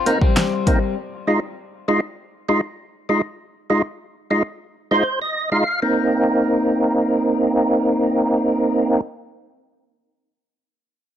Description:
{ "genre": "dancehall", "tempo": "99 BPM", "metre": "4/4", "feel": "straight", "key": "C minor", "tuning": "A4 = 440 Hz", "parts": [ { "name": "electric guitar at the edge of break-up", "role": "arpeggios", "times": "0.0-0.9 s", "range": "G3 to Eb4", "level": "-24 LUFS", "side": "left 5 dB", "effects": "lush chorus, tape echo" }, { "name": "downlifter", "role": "sound effects", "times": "0.0-1.0 s", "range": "none", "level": "-45 LUFS", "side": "left 1 dB", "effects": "none" }, { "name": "percussive tonewheel organ", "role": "accompaniment", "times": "0.1-9.0 s", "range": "Ab3 to F5", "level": "-17 LUFS", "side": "right 1 dB", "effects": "overdrive, chorus vibrato, slow rotary speaker, sidechain pumping" }, { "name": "deep house drum kit", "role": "drums", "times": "0.1-0.8 s", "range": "finger snaps, hi-hat, kick drum, snare drum", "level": "-18 LUFS", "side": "equal", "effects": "none" } ], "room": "little or no reverb", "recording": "dry, gritty hardware recording", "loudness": "-17 LUFS", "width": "side -10 dB against mid", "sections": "0.0-5.8 A section; 5.8-8.2 B section", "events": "tonewheel organ fill 4.6-5.8", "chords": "0.0 Cm7; 1.0 Fm7; 5.8 Cm7" }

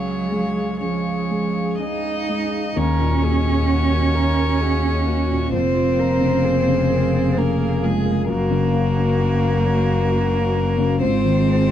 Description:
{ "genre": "neoclassical piano and strings", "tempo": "65 BPM", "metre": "3/4", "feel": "rubato", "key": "unclear", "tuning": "A4 = 441 Hz", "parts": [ { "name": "rich violin", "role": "melody", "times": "0.0-11.7 s", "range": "Ab4 to Eb5", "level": "-25 LUFS", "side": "left 4 dB", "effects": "none" }, { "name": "warm cello", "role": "second line", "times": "0.0-11.7 s", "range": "F3 to Eb4", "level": "-23 LUFS", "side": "right 6 dB", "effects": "none" }, { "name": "felt-muted upright piano", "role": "accompaniment", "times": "0.0-11.7 s", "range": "Db2 to Db5", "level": "-24 LUFS", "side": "left 3 dB", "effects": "none" }, { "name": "warm viola", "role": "accompaniment", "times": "0.0-11.7 s", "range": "F4 to Bb4", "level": "-30 LUFS", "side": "right 3 dB", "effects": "none" }, { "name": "hollow soft pad", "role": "sustained chords", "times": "0.0-11.7 s", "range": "Ab3 to F5", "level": "-32 LUFS", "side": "equal", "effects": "chorus" }, { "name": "warm double bass", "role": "bass", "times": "2.8-11.7 s", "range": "F1 to Eb2", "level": "-21 LUFS", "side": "left 1 dB", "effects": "none" } ], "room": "light reverb", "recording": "dark, warm production", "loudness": "-17 LUFS", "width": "side -10 dB against mid", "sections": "0.0-2.8 A section; 2.8-11.7 B section", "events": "none", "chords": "0.0 Db; 2.8 Ebm7; 5.5 Bbm/F; 8.3 Gb; 11.0 Ab5" }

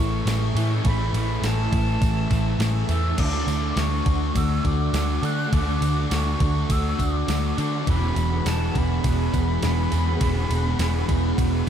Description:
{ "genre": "rock, shoegaze and dream pop", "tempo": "103 BPM", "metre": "4/4", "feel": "straight", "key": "D lydian", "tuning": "A4 = 440 Hz", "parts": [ { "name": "silver concert flute", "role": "melody", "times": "0.0-11.7 s", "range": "A5 to F#6", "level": "-31 LUFS", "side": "equal", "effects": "diffuse ambient delay" }, { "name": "string machine, cellos", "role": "sustained chords", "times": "0.0-11.7 s", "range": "G#4 to C#6", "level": "-36 LUFS", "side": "equal", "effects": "phaser, ensemble chorus" }, { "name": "electric guitar through a small old amp", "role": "riff", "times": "0.0-11.7 s", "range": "A2 to A4", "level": "-31 LUFS", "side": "right 9 dB", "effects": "reverse reverb" }, { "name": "overdriven electric guitar", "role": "riff", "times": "0.0-11.7 s", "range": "E2 to D4", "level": "-31 LUFS", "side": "right 1 dB", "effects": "analog chorus" }, { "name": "thick fuzz guitar", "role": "riff", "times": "0.0-11.7 s", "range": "E2 to D4", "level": "-29 LUFS", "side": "left 7 dB", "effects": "distortion, lush chorus" }, { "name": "vintage muted picked electric bass", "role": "bass", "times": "0.0-11.7 s", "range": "E1 to D3", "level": "-24 LUFS", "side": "equal", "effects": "none" }, { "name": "crisp 8-bit digital drum machine", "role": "drums", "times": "0.3-11.5 s", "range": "crash cymbal, kick drum, ride cymbal, snare drum", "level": "-27 LUFS", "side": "equal", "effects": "overdrive" }, { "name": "tambourine", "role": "percussion", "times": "0.3-11.7 s", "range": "none", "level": "-43 LUFS", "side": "right 16 dB", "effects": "none" } ], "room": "moderate huge ambient reverb, RT60 4.4 s", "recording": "dreamy mix soaked in reverb", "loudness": "-20 LUFS", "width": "side -9 dB against mid", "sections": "0.0-11.7 A section", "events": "none", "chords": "0.0 Amaj7; 3.2 Dmaj7; 7.9 E13" }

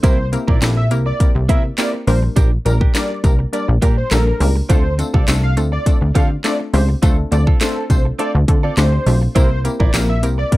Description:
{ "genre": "dance-pop", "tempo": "103 BPM", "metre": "4/4", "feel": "straight", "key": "D minor", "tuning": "A4 = 440 Hz", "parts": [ { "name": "wide unison lead", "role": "melody", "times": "0.0-10.6 s", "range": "A4 to F5", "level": "-24 LUFS", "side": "equal", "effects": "sidechain pumping" }, { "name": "hollow square pluck", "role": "accompaniment", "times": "0.0-10.6 s", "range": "G3 to C5", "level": "-23 LUFS", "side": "left 2 dB", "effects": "chorus, sidechain pumping" }, { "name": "direct-recorded clean electric guitar", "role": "riff", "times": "0.0-10.4 s", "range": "C4 to Bb4", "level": "-25 LUFS", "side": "right 6 dB", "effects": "wide subtle chorus" }, { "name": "plucky analog bass", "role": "bass", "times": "0.0-10.4 s", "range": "Bb1 to D3", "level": "-16 LUFS", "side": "equal", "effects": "sidechain pumping" }, { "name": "house drum kit", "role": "drums", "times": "0.0-10.6 s", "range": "handclaps, hi-hat, kick drum, snare drum", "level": "-16 LUFS", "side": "equal", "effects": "none" }, { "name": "tambourine", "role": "percussion", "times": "0.0-10.4 s", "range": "none", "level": "-33 LUFS", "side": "left 3 dB", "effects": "none" } ], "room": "little or no reverb", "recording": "dark, warm production", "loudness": "-13 LUFS", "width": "side -18 dB against mid", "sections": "0.0-10.6 A section", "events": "none", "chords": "0.0 C7; 2.1 Gm/Bb; 4.7 Dm7; 9.4 C7" }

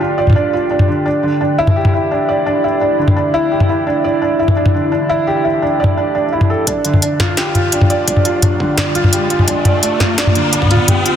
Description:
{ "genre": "half-time drum and bass", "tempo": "171 BPM", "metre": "4/4", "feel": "half-time", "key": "D dorian", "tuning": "A4 = 440 Hz", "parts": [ { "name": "deep dark ambient pad", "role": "sustained chords", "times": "0.0-11.2 s", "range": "D4 to B5", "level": "-23 LUFS", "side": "left 1 dB", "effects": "chorus, built-in reverb, sidechain pumping" }, { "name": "felt-muted upright piano", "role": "arpeggios", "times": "0.0-11.2 s", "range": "D3 to D5", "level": "-15 LUFS", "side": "right 1 dB", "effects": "dub echo" }, { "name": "industrial drum kit", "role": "drums", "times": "0.3-11.1 s", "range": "hi-hat, snare drum, toms", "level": "-14 LUFS", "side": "left 1 dB", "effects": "none" }, { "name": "electronic kick drum", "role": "drums", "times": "6.7-11.0 s", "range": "none", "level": "-26 LUFS", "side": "equal", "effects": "high-pass filter on kick, high-pass filter on room" }, { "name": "riser", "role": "sound effects", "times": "7.8-11.2 s", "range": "none", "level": "-21 LUFS", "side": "left 2 dB", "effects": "none" } ], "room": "moderate huge ambient reverb, RT60 4.8 s", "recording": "dense, heavily limited modern master", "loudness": "-12 LUFS", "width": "side -9 dB against mid", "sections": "0.0-6.7 A section; 6.7-11.2 B section", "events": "build-up 6.7-11.2; riser 7.8-11.2", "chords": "0.0 Dm; 1.1 Em; 6.7 Dm" }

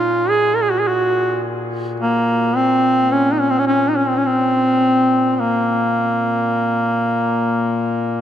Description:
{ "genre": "caucasian folk, Caucasian lament", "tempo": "45-54 BPM", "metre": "3/4", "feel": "rubato", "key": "Bb minor", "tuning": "A4 = 440 Hz", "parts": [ { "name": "clear duduk", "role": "melody", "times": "0.0-8.2 s", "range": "Bb3 to Bb4", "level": "-15 LUFS", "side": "equal", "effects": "none" }, { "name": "warm duduk", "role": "drone", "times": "0.0-8.2 s", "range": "Bb2", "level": "-26 LUFS", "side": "left 2 dB", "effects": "none" } ], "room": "wet cathedral reverb, RT60 6.0 s", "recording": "none", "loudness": "-15 LUFS", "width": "side -10 dB against mid", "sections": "0.0-8.2 A section", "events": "none", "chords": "none" }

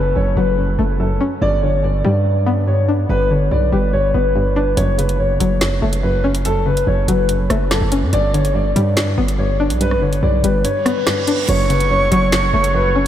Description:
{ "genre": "hip hop, drill", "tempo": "143 BPM", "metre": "4/4", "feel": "half-time", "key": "F# phrygian", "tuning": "A4 = 441 Hz", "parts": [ { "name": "dark concert grand piano", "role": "melody", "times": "0.0-12.9 s", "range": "A4 to D5", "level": "-20 LUFS", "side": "left 1 dB", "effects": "wide subtle chorus, diffuse ambient delay" }, { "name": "string-like resonator pluck", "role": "accompaniment", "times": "0.0-13.1 s", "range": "F#2 to D4", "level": "-20 LUFS", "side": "left 1 dB", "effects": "chorus" }, { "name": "distorted 808-style bass", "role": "bass", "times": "0.0-13.1 s", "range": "F#1 to G2", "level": "-18 LUFS", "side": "right 1 dB", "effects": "distortion" }, { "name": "downlifter and reverse cymbal", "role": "sound effects", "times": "0.0-1.4, 10.8-11.5 s", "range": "none", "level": "-32 LUFS", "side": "right 5 dB", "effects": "none" }, { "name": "drill drum kit", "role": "drums", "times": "4.8-12.7 s", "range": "crash cymbal, finger snaps, hi-hat, rim click, snare drum", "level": "-24 LUFS", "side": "equal", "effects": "none" }, { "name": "concert flute", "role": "second line", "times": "11.5-13.1 s", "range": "C#6", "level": "-20 LUFS", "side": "right 4 dB", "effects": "diffuse ambient delay" }, { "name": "warm woodwind section", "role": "sustained chords", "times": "11.5-13.1 s", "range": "F#3 to C#5", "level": "-25 LUFS", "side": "right 2 dB", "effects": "none" } ], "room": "moderate cathedral reverb, RT60 7.1 s", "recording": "dreamy mix soaked in reverb", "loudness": "-14 LUFS", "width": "side -11 dB against mid", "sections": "0.0-11.5 A section; 11.5-13.1 B section", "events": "kick muted 10.6-11.5; reverse cymbal 10.8-11.5", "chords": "0.0 F#m; 1.4 G; 4.8 F#m; 8.1 G; 11.5 F#m" }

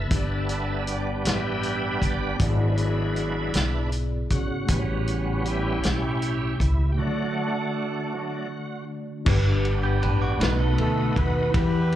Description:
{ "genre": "slow gospel", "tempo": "52 BPM (dotted quarters)", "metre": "6/8", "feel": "straight", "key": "G major", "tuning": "A4 = 439 Hz", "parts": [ { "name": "mellow tine electric piano", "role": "accompaniment", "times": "0.0-12.0 s", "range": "G2 to D5", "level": "-29 LUFS", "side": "left 2 dB", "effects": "medium stereo tremolo, slapback echo" }, { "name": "bright tonewheel organ", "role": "sustained chords", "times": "0.0-12.0 s", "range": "C#3 to E5", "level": "-29 LUFS", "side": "right 2 dB", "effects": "fast rotary speaker, overdrive, chorus vibrato" }, { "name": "upright bass", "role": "bass", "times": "0.0-12.0 s", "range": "G1 to E2", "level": "-26 LUFS", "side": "equal", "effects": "none" }, { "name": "warm soul drum kit", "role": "drums", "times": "0.1-12.0 s", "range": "crash cymbal, hi-hat, kick drum, ride cymbal, snare drum", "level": "-26 LUFS", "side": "equal", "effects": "none" }, { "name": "clean electric guitar", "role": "second line", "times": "9.8-11.5 s", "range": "B3 to D5", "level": "-32 LUFS", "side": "right 4 dB", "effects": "slapback echo" }, { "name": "mellow horn section", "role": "melody", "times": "10.8-12.0 s", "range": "A3 to B4", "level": "-27 LUFS", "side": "left 1 dB", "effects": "none" } ], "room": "small room ambience", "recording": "live gig heard through the venue's PA, club reverb", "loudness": "-22 LUFS", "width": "side -12 dB against mid", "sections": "0.0-9.3 A section; 9.3-12.0 B section", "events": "tonewheel organ solo 0.0-9.3; break 7.0-9.3", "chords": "0.1 G; 2.4 E7/G#; 4.7 A7; 7.0 D; 9.3 G; 10.4 B7" }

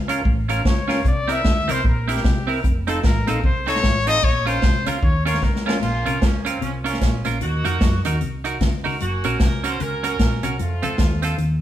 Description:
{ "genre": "ska", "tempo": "151 BPM", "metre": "4/4", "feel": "swing 60% on 8ths", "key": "Bb harmonic minor", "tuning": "A4 = 438 Hz", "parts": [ { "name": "hollow-body short-scale fingered electric bass", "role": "bass", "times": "0.0-11.6 s", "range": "F1 to Gb2", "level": "-25 LUFS", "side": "equal", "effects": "none" }, { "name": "semi-hollow electric guitar", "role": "accompaniment", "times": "0.1-11.4 s", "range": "C4 to Bb4", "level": "-26 LUFS", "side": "right 4 dB", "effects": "none" }, { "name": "percussive tonewheel organ", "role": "stabs", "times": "0.1-5.8 s", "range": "C4 to Bb4", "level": "-29 LUFS", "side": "left 1 dB", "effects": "overdrive, slow rotary speaker" }, { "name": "swinging big-band drum kit", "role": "drums", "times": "0.1-11.5 s", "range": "crash cymbal, hi-hat, kick drum, snare drum", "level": "-20 LUFS", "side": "equal", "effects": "none" }, { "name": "clean electric guitar", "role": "riff", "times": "0.3-11.5 s", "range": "F2 to Gb3", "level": "-31 LUFS", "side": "left 4 dB", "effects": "none" }, { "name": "clear trumpet", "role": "melody", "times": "0.7-5.7 s", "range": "G4 to E5", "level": "-23 LUFS", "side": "left 3 dB", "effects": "none" }, { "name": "clear horn section", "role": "melody", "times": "5.8-11.4 s", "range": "F3 to C5", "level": "-28 LUFS", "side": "right 2 dB", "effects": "none" } ], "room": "moderate stone room reverb, RT60 0.9 s", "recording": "band playing live in one room", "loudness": "-18 LUFS", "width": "side -12 dB against mid", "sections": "0.0-5.8 A section; 5.8-11.6 B section", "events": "trumpet solo 0.0-5.8; drum fill 5.4-5.8", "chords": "0.0 Bbm; 1.1 C7; 2.6 F7; 4.2 Bbm; 7.4 Ebm; 9.0 Gb; 10.6 F" }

